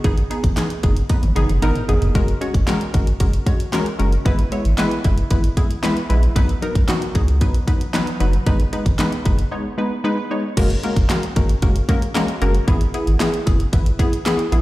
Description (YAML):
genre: dance-pop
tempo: 114 BPM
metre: 4/4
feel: straight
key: unclear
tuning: A4 = 440 Hz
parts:
  - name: funky polysynth comp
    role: accompaniment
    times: 0.0-14.6 s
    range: F#3 to C#5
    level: -22 LUFS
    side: left 1 dB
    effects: chorus, sidechain pumping
  - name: saturated sub bass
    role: bass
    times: 0.0-14.6 s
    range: F#1 to C#2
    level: -18 LUFS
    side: equal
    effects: sidechain pumping
  - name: pop drum kit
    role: drums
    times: 0.0-14.6 s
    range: crash cymbal, handclaps, hi-hat, kick drum, snare drum, toms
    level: -19 LUFS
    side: equal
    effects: none
room: light reverb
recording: played on a big sound system in a bare room, stone room reverb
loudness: -16 LUFS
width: side -17 dB against mid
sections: 0.0-2.2 A section; 2.2-10.6 B section; 10.6-14.6 A section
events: drum fill 1.1-2.2; break 9.5-10.6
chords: 0.0 G#m; 2.2 F#add9; 4.3 E; 6.4 B; 8.5 G#m; 10.6 F#add9; 12.7 E